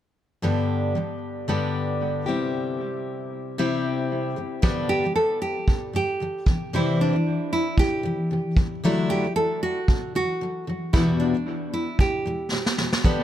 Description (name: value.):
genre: acoustic pop.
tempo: 114 BPM.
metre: 4/4.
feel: swing 55% on 16ths.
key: G major.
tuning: A4 = 439 Hz.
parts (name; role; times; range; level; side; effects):
picked steel-string acoustic guitar; accompaniment; 0.4-13.2 s; E2 to G4; -25 LUFS; left 2 dB; analog delay.
vintage brush drum kit; drums; 4.6-13.2 s; kick drum, snare drum; -21 LUFS; right 1 dB; none.
nylon-string guitar; melody; 4.9-12.7 s; D4 to A4; -26 LUFS; right 2 dB; analog delay.
room: light reverb.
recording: echo-heavy mix.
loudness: -22 LUFS.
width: side -11 dB against mid.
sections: 0.4-4.6 A section; 4.6-13.2 B section.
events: drum fill 12.5-13.0.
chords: 0.4 G; 2.3 C; 4.4 G5; 4.6 G; 6.5 C; 8.6 Dadd9; 10.9 Emadd9.